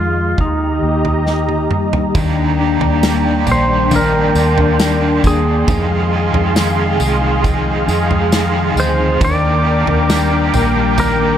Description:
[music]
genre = dream pop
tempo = 68 BPM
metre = 4/4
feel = straight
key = Eb major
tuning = A4 = 440 Hz
[part]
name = clean lap steel guitar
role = melody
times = 0.0-11.4 s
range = Eb4 to D5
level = -20 LUFS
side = right 1 dB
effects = digital delay
[part]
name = warm analog pad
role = sustained chords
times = 0.0-11.4 s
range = Ab3 to Eb6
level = -19 LUFS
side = right 1 dB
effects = chorus
[part]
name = mellow electric guitar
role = arpeggios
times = 0.0-11.4 s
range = F2 to Eb4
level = -18 LUFS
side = left 4 dB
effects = analog chorus, digital delay
[part]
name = vintage muted fingered electric bass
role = bass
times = 0.0-11.4 s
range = Bb1 to F2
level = -19 LUFS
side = equal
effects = none
[part]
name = loose indie drum kit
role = drums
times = 0.4-11.2 s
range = kick drum, snare drum, tambourine, toms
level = -19 LUFS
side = right 1 dB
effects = none
[part]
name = crunchy overdriven guitar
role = accompaniment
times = 2.1-11.4 s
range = F2 to G4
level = -21 LUFS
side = right 3 dB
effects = tremolo, wide subtle chorus
[sound]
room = moderate huge ambient reverb, RT60 4.8 s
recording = none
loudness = -12 LUFS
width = side -10 dB against mid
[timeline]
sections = 0.0-2.2 A section; 2.2-11.4 B section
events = drum fill 1.3-2.2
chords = 0.4 Eb; 2.2 Ebmaj7; 5.7 Fm7; 9.2 Ebmaj7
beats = 0.39 1.27 | 2.15 3.03 3.92 4.80 | 5.68 6.56 7.45 8.33 | 9.21 10.09 10.97

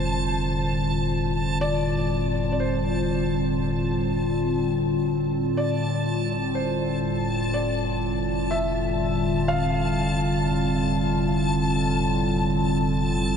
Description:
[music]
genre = ambient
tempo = 62 BPM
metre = 4/4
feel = straight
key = F major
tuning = A4 = 440 Hz
[part]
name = felt-muted upright piano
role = melody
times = 0.0-11.4 s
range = C5 to F5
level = -31 LUFS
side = equal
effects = ping-pong delay
[part]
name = warbly tape-like pad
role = sustained chords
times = 0.0-13.4 s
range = A2 to F4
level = -23 LUFS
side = left 1 dB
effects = chorus, built-in reverb
[part]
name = warm sub bass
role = bass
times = 0.0-13.4 s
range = F1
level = -31 LUFS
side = equal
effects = none
[part]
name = backwards swelling texture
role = texture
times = 0.0-13.4 s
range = A5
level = -31 LUFS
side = left 1 dB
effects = built-in reverb
[sound]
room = moderate huge ambient reverb, RT60 7.6 s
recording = cassette tape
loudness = -22 LUFS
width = side -7 dB against mid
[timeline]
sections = 0.0-13.4 A section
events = fade-in on felt piano 0.0-13.4; filter sweep on ambient pad 0.0-13.4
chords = 0.0 Fadd9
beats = 0.66 | 1.64 2.61 3.59 4.58 | 5.57 6.55 7.53 8.51 | 9.49 10.46 11.43 12.40

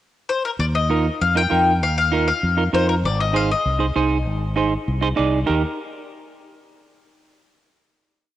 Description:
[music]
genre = latin, cumbia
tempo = 196 BPM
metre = 4/4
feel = straight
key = Eb major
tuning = A4 = 441 Hz
[part]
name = bowl-back mandolin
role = melody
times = 0.3-5.1 s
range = Bb4 to G5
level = -21 LUFS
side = left 4 dB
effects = cassette tape
[part]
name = fingered electric bass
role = bass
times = 0.6-5.6 s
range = Ab1 to F2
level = -22 LUFS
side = equal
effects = none
[part]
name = semi-hollow electric guitar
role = accompaniment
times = 0.9-5.6 s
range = Eb4 to D5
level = -22 LUFS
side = right 5 dB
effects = none
[sound]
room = moderate lush hall reverb, RT60 2.6 s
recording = home recording on cassette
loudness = -17 LUFS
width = side -13 dB against mid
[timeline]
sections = 0.0-0.6 pickup bar; 0.6-5.5 A section; 5.5-6.7 final chord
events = none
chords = 0.0 N.C.; 0.6 Ebsus2; 3.0 Ab; 5.5 Eb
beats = 0.28 | 0.59 0.90 1.20 1.51 | 1.81 2.12 2.43 2.73 | 3.04 3.35 3.65 3.96 | 4.26 4.57 4.87 5.18 | 5.48

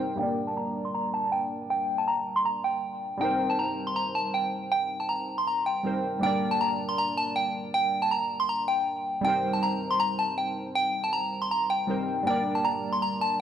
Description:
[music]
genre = hip hop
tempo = 159 BPM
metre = 4/4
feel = half-time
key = G minor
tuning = A4 = 440 Hz
[part]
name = soft synth bell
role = melody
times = 0.0-13.4 s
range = G5 to C6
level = -26 LUFS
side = equal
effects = chorus, phaser, low-pass filter, tape echo
[part]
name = warbly lo-fi synth keys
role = accompaniment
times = 0.0-13.4 s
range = G3 to D5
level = -32 LUFS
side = right 1 dB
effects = chorus, low-pass filter
[sound]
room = digital ambience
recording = dry, gritty hardware recording, transformer saturation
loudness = -25 LUFS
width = side -9 dB against mid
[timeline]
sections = 0.2-6.2 A section; 6.2-13.4 B section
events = filter sweep 0.2-6.2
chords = 0.2 Gm; 3.2 Cm7; 6.2 Gm; 9.2 Cm7; 12.3 Gm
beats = | 0.19 0.57 0.94 1.32 | 1.70 2.08 2.46 2.83 | 3.21 3.59 3.96 4.34 | 4.72 5.10 5.47 5.85 | 6.23 6.61 6.98 7.36 | 7.74 8.12 8.49 8.87 | 9.25 9.62 10.00 10.38 | 10.76 11.13 11.51 11.89 | 12.27 12.64 13.02 13.40

